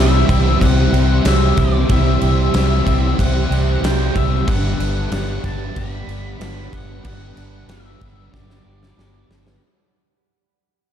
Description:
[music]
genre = rock, shoegaze and dream pop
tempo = 93 BPM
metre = 4/4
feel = straight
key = unclear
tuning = A4 = 440 Hz
[part]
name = octave-fuzz lead guitar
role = melody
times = 0.0-9.3 s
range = D5 to B5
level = -27 LUFS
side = left 7 dB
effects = distortion, digital delay
[part]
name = glassy FM pad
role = sustained chords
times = 0.0-9.6 s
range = G4 to C6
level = -30 LUFS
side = right 2 dB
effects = ensemble chorus, built-in reverb
[part]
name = direct-recorded clean electric guitar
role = arpeggios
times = 0.0-9.6 s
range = G3 to G4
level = -31 LUFS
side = right 10 dB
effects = ensemble chorus, digital delay
[part]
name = biting overdriven guitar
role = riff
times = 0.0-9.6 s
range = G2 to E4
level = -26 LUFS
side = left 1 dB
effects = none
[part]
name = crunchy overdriven guitar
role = riff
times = 0.0-9.6 s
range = G2 to G4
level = -25 LUFS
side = left 11 dB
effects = lush chorus
[part]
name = overdriven semi-hollow guitar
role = riff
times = 0.0-9.6 s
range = G2 to G4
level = -26 LUFS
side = right 11 dB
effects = reverse reverb
[part]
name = vintage muted fingered electric bass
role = bass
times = 0.0-9.6 s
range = G1 to C2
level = -18 LUFS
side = equal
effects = none
[part]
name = big rock drum kit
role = drums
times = 0.3-9.6 s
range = crash cymbal, kick drum, snare drum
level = -21 LUFS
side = equal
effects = none
[sound]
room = little or no reverb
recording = dark, warm production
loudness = -14 LUFS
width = side -9 dB against mid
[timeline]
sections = 0.0-9.6 A section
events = fade-out 0.0-9.6; drum fill 8.3-9.6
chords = 0.0 C; 4.5 Gmaj7

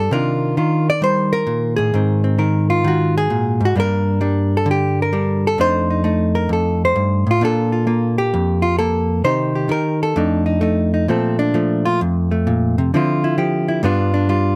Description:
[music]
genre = solo jazz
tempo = 131 BPM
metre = 4/4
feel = swing 67% on 8ths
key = Bb major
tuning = A4 = 440 Hz
[part]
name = hollow-body jazz guitar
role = solo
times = 0.0-14.6 s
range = F2 to D5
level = -18 LUFS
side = equal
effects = none
[sound]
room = little or no reverb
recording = close, detailed microphones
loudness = -18 LUFS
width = mono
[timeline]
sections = 0.0-11.1 A section; 11.1-14.6 B section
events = hollow-body jazz guitar solo 11.1-14.6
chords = 0.1 Cm11; 1.9 Ab9; 3.8 Gm; 5.6 F13; 7.4 Bbmaj7; 9.2 Cm; 10.2 F6; 11.1 Bbmaj9; 12.9 Dm9; 13.8 G7

